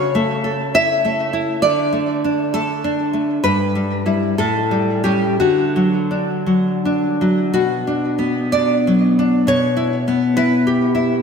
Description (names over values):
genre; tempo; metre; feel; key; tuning
romantic piece for solo classical guitar; 55-68 BPM (dotted quarters); 6/8; rubato; D major, B minor from 7.5 s; A4 = 440 Hz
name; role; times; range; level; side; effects
nylon-string guitar; solo; 0.0-11.2 s; G2 to E5; -15 LUFS; equal; wide subtle chorus, tape echo
room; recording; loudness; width
wet lush hall reverb, RT60 1.9 s, studio ambience; dreamy mix soaked in reverb; -15 LUFS; side -6 dB against mid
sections
0.0-7.5 A section; 7.5-11.2 B section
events
none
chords
0.0 A/C#; 1.6 D5; 3.4 Em/G; 4.4 A7; 5.4 D; 7.5 Bm; 9.5 C#m7b5/B